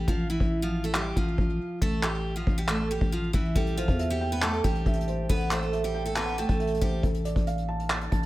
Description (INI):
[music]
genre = hip hop, trap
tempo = 138 BPM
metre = 4/4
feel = half-time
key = A minor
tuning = A4 = 440 Hz
[part]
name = picked steel-string acoustic guitar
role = melody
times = 0.0-7.0 s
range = E3 to B4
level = -31 LUFS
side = right 2 dB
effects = ping-pong delay
[part]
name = growling 808-style bass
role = bass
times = 0.0-8.3 s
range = A1 to E2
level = -29 LUFS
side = equal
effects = none
[part]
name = vintage brush drum kit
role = drums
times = 0.1-8.3 s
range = handclaps, hi-hat, kick drum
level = -28 LUFS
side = equal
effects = none
[part]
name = felt-muted upright piano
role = accompaniment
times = 3.6-8.3 s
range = A4 to A6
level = -33 LUFS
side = right 2 dB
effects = none
[sound]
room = studio reverb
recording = none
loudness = -24 LUFS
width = side -17 dB against mid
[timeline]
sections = 0.0-8.3 A section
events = break 0.0-3.6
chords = 0.1 Fmaj9/A; 3.6 Am7; 7.0 Dm/A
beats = | 0.08 0.51 0.95 1.38 | 1.82 2.25 2.69 3.12 | 3.56 3.99 4.42 4.86 | 5.29 5.73 6.16 6.60 | 7.03 7.47 7.90